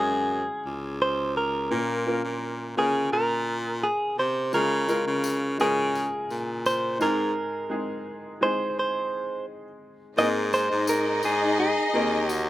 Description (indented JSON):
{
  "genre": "piano-driven pop",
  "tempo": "85 BPM",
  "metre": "4/4",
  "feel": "straight",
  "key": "unclear",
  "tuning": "A4 = 440 Hz",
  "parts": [
    { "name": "direct-recorded clean electric guitar", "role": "melody", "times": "0.0-12.5 s", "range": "Ab4 to Eb5", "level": "-26 LUFS", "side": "right 1 dB", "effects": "none" },
    { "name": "clear upright piano", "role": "accompaniment", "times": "0.0-12.5 s", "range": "Ab2 to Bb4", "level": "-32 LUFS", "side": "left 1 dB", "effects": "none" },
    { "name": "edgy baritone saxophone", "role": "bass", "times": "0.0-12.5 s", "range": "Db2 to Db3", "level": "-28 LUFS", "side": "left 1 dB", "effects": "none" },
    { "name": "tambourine", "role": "percussion", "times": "4.5-12.5 s", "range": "none", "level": "-39 LUFS", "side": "left 4 dB", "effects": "none" },
    { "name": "warm symphonic violin section", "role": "second line", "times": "10.2-12.5 s", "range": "Eb4 to Eb5", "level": "-27 LUFS", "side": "left 2 dB", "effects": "digital delay" }
  ],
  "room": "moderate small room reverb, RT60 0.5 s",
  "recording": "rough home demo mix",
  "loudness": "-23 LUFS",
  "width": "side -15 dB against mid",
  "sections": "0.0-10.2 A section; 10.2-12.5 B section",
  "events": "break 7.4-10.2",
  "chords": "0.0 Gbsus2; 1.7 Bbm; 4.5 Db; 7.0 Ab; 10.2 Abadd9",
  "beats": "0.30 1.01 | 1.71 2.42 3.12 3.83 | 4.54 5.24 5.95 6.66 | 7.36 8.07 8.77 9.48 | 10.18 10.89 11.60 12.30"
}